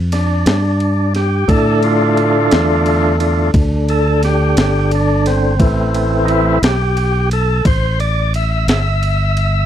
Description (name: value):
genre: slow blues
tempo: 58 BPM (dotted quarters)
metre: 12/8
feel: straight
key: unclear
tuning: A4 = 440 Hz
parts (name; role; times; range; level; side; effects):
- fingered electric bass; bass; 0.0-9.7 s; G1 to A2; -16 LUFS; equal; none
- overdriven tonewheel organ; sustained chords; 0.1-9.7 s; D3 to E5; -16 LUFS; equal; slow rotary speaker
- breakbeat sampler-style drum kit; drums; 0.1-9.5 s; kick drum, ride cymbal, snare drum; -17 LUFS; equal; none
room: little or no reverb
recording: dry, close 1970s-style studio recording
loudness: -12 LUFS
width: side -10 dB against mid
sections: 0.0-9.7 A section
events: tonewheel organ solo 0.0-9.7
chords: 0.0 Dm; 5.6 Am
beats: 0.47 | 1.49 2.52 3.55 4.57 | 5.60 6.63 7.66 8.68